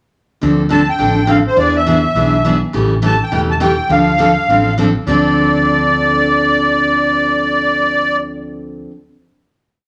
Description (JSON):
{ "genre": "acoustic string swing (jazz manouche)", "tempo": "206 BPM", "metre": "4/4", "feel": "swing 59% on 8ths", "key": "D minor", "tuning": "A4 = 437 Hz", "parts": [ { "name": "picked steel-string acoustic guitar", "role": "accompaniment", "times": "0.4-8.9 s", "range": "C#3 to A4", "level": "-18 LUFS", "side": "equal", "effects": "none" }, { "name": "mellow fretless electric bass", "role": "bass", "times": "0.4-8.9 s", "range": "E1 to E2", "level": "-22 LUFS", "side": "equal", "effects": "none" }, { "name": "musette accordion", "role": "melody", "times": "0.7-8.2 s", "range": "C5 to A5", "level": "-16 LUFS", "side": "equal", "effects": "none" } ], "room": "wet large studio reverb, RT60 0.9 s", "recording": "none", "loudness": "-14 LUFS", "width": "mono", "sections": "0.4-5.1 A section; 5.1-7.4 final chord", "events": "none", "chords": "0.4 Dm7; 1.6 E7; 2.7 A7; 3.9 Dm7" }